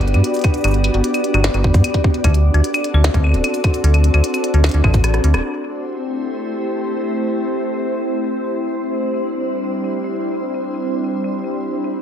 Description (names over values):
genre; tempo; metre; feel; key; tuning
IDM; 150 BPM; 4/4; straight; A dorian; A4 = 439 Hz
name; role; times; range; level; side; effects
glassy FM pad; sustained chords; 0.0-12.0 s; G3 to D5; -20 LUFS; equal; ensemble chorus, built-in reverb
metallic FM bass; bass; 0.0-5.4 s; D1 to G2; -14 LUFS; equal; none
glitchy drum kit; drums; 0.0-12.0 s; claves, hi-hat, rim click, shaker, snare drum; -23 LUFS; left 1 dB; low-pass filter on hats, low-pass filter on perc, low-pass filter on snare, low-pass filter on room, analog delay
electronic kick drum; drums; 0.4-5.0 s; none; -17 LUFS; equal; none
room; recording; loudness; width
light reverb, digital ambience; echo-heavy mix; -16 LUFS; side -9 dB against mid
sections
0.0-5.4 A section; 5.4-12.0 B section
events
kick drops out 5.0-5.4; drum fill 5.0-5.4; band accent 5.3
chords
0.0 Gmaj7; 2.2 D7; 5.4 Am7; 8.6 Cadd9